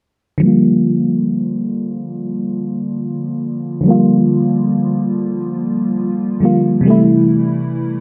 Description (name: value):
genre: R&B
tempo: free time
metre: none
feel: none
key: G dorian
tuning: A4 = 440 Hz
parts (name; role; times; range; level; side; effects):
- FM electric piano with soft pad layer; accompaniment; 0.4-8.0 s; C3 to F4; -16 LUFS; equal; chorus, low-pass filter
room: moderate spring reverb, RT60 1.1 s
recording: none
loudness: -16 LUFS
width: mono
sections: 0.4-8.0 A section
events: none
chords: 0.4 Gm7; 6.9 Am7